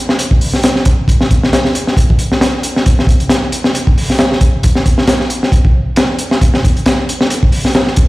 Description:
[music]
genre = breakbeat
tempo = 135 BPM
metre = 4/4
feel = swing 56% on 16ths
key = none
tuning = none
[part]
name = crunchy breakbeat drum kit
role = drums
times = 0.1-8.1 s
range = hi-hat, kick drum, snare drum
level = -10 LUFS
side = equal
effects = none
[sound]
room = light reverb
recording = played on a big sound system in a bare room, large studio reverb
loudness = -10 LUFS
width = side -20 dB against mid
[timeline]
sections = 0.0-8.1 A section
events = none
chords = none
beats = 0.19 0.64 | 1.08 1.52 1.97 2.41 | 2.86 3.30 3.75 4.19 | 4.64 5.08 5.53 5.97 | 6.41 6.86 7.30 7.75

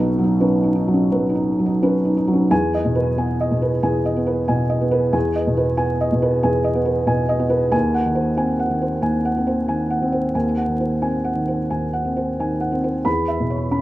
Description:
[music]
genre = neoclassical minimalist piano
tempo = 91 BPM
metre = 4/4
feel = uneven beats, rubato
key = E major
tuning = A4 = 440 Hz
[part]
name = felt-muted upright piano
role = solo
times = 0.0-13.8 s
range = B1 to B5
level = -17 LUFS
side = equal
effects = analog delay
[sound]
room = moderate studio ambience, RT60 0.5 s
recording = rough home demo mix, vinyl crackle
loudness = -17 LUFS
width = side -16 dB against mid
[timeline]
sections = 0.0-2.5 A section; 2.5-13.8 B section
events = none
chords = 0.0 Badd9; 2.5 Emaj7; 7.7 G#7/D#; 13.1 C#m7/E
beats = 0.42 1.12 1.82 | 2.51 3.18 3.84 4.50 | 5.15 5.80 6.45 7.08 | 7.73 8.38 9.03 9.68 | 10.34 11.02 11.70 12.38 | 13.06 13.73

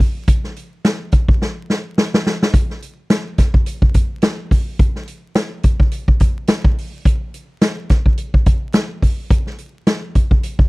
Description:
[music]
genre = funk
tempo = 106 BPM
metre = 4/4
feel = swing 56% on 16ths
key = none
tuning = none
[part]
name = swinging big-band drum kit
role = drums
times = 0.0-10.7 s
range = hi-hat, kick drum, snare drum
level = -14 LUFS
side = equal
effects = none
[sound]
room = little or no reverb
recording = dry, close 1970s-style studio recording, vinyl crackle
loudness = -15 LUFS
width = side -24 dB against mid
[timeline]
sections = 0.0-2.5 A section; 2.5-10.7 B section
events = drum fill 1.4-2.5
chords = none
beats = | 0.28 0.84 1.41 1.97 | 2.53 3.10 3.66 4.23 | 4.79 5.36 5.92 6.49 | 7.05 7.61 8.18 8.74 | 9.31 9.87 10.43

